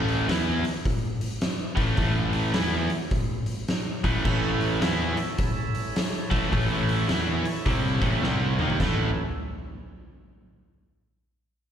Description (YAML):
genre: blues rock power trio and southern rock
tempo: 106 BPM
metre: 4/4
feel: swing 63% on 8ths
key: A mixolydian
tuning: A4 = 440 Hz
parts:
  - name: cranked stack guitar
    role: riff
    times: 0.0-9.1 s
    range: A2 to E4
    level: -27 LUFS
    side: equal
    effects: overdrive, slapback echo
  - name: fuzz fingered electric bass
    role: bass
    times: 0.0-9.1 s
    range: A1 to E2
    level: -28 LUFS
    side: equal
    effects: overdrive
  - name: oversized low-tuned drum kit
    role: drums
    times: 0.1-9.0 s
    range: crash cymbal, hi-hat, kick drum, snare drum, toms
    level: -27 LUFS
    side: equal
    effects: none
  - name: overdriven tonewheel organ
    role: sustained chords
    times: 4.2-9.2 s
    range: C#4 to C#5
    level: -34 LUFS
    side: right 4 dB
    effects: slow rotary speaker
room: light reverb, small room ambience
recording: live gig heard through the venue's PA, recital hall reverb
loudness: -23 LUFS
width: side -9 dB against mid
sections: 0.0-8.8 A section; 8.8-11.1 B section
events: drum fill 8.2-8.8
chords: 0.0 A